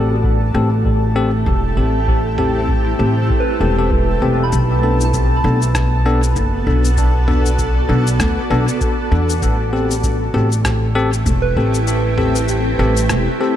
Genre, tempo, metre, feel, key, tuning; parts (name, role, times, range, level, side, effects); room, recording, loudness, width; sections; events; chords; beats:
ambient dub; 98 BPM; 4/4; swing 58% on 16ths; A dorian; A4 = 440 Hz
granular cloud pad; sustained chords; 0.0-13.6 s; A3 to D5; -23 LUFS; equal; built-in reverb
bell-like tine electric piano; stabs; 0.0-13.5 s; B3 to A4; -21 LUFS; left 4 dB; dub echo
upright bass; bass; 0.0-13.3 s; E1 to E2; -17 LUFS; equal
bubbling stepped-filter texture; texture; 0.0-13.6 s; A4 to A5; -27 LUFS; right 1 dB; chorus, built-in reverb
electronic kick drum; drums; 0.2-11.4 s; -21 LUFS; equal
lo-fi sampler-style drum kit; drums; 2.4-13.2 s; cabasa, rim click, toms; -25 LUFS; left 1 dB; dub echo
soft synth bell; arpeggios; 3.4-13.6 s; B4 to B5; -26 LUFS; right 4 dB; chorus, phaser, dub echo
light reverb, digital ambience; echo-heavy mix; -14 LUFS; side -11 dB against mid
0.0-13.6 A section
kick drops out 11.9-13.6
0.0 Am7; 4.5 Bm7; 9.4 Am7
0.24 0.85 1.46 | 2.08 2.69 3.30 3.91 | 4.53 5.14 5.75 6.36 | 6.97 7.59 8.20 8.81 | 9.42 10.04 10.65 11.26 | 11.87 12.48 13.10